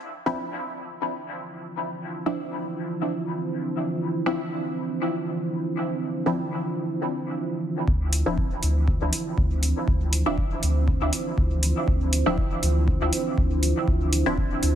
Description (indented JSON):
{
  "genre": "dub techno",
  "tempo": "120 BPM",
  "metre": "4/4",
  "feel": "swing 54% on 16ths",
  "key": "D minor",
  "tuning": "A4 = 438 Hz",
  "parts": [
    { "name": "dark analog pad", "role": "sustained chords", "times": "1.4-14.8 s", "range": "D4 to C5", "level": "-29 LUFS", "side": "right 2 dB", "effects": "chorus, sidechain pumping" },
    { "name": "filtered dub chord stab", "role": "stabs", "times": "0.3-14.4 s", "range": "F3 to E4", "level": "-29 LUFS", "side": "left 1 dB", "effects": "chorus, phaser, sidechain pumping, dub echo" },
    { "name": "soft dub sub bass", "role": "bass", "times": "7.9-14.8 s", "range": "D1 to D2", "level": "-24 LUFS", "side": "equal", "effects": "sidechain pumping" },
    { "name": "electronic kick drum", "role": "drums", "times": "7.9-14.5 s", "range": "none", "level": "-25 LUFS", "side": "equal", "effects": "small room ambience" },
    { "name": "electronic hi-hat", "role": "drums", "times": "8.1-14.7 s", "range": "none", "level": "-28 LUFS", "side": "equal", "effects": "low-pass filter on hats, small room ambience" }
  ],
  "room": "light reverb",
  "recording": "heavily compressed radio sound, multiband compression",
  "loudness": "-23 LUFS",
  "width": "side -10 dB against mid",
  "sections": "0.0-7.9 A section; 7.9-14.8 B section",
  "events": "filter sweep on analog synth pad 0.0-7.9",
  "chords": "0.0 Dm9"
}